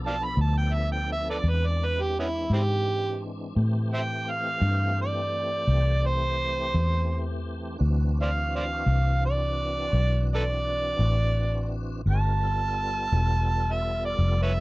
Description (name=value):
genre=slow blues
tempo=56 BPM (dotted quarters)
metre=12/8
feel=straight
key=unclear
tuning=A4 = 440 Hz
part: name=tonewheel organ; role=sustained chords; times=0.0-14.6 s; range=E3 to Bb4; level=-35 LUFS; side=left 1 dB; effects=slow rotary speaker, overdrive, chorus vibrato
part: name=vintage muted fingered electric bass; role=bass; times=0.0-14.6 s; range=E1 to A2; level=-25 LUFS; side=equal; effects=none
part: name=overdriven harmonica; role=melody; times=0.1-14.6 s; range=B3 to B5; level=-28 LUFS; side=right 2 dB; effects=none
room=little or no reverb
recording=dark, warm production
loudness=-23 LUFS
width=side -20 dB against mid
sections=0.0-14.6 A section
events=harmonica solo 0.0-14.6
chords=0.0 Bm7b5; 1.4 E7alt; 3.6 Am7; 7.8 D9; 12.1 G9